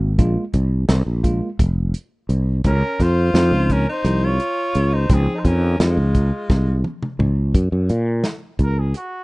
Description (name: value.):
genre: progressive instrumental, band music in an uneven meter.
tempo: 171 BPM (eighths).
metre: 7/8.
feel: straight.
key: Gb lydian.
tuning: A4 = 438 Hz.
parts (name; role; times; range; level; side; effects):
tine electric piano; accompaniment; 0.0-6.1 s; F3 to C5; -26 LUFS; right 1 dB; none.
sustaining fretless electric bass; bass; 0.0-8.9 s; F1 to Bb2; -17 LUFS; equal; none.
warm soul drum kit; drums; 0.2-9.1 s; hi-hat, kick drum, snare drum, toms; -20 LUFS; equal; none.
mellow trumpet; melody; 2.7-9.2 s; F4 to Db5; -26 LUFS; equal; none.
bright alto saxophone; second line; 2.7-6.8 s; Ab3 to F4; -26 LUFS; left 1 dB; none.
room: small room ambience.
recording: rough home demo mix, nothing above 10.3 kHz.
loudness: -16 LUFS.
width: side -24 dB against mid.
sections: 0.0-7.5 A section; 7.5-9.2 B section.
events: drum fill 6.5-7.5; trumpet solo 7.5-9.2.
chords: 0.2 Fmadd11; 2.6 Dbmaj7; 7.5 Gb.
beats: | 0.19 0.54 0.89 1.24 1.59 1.94 2.29 | 2.65 3.00 3.35 3.70 4.05 4.40 4.75 | 5.10 5.45 5.79 6.14 6.50 6.84 7.20 | 7.54 7.89 8.24 8.59 8.94.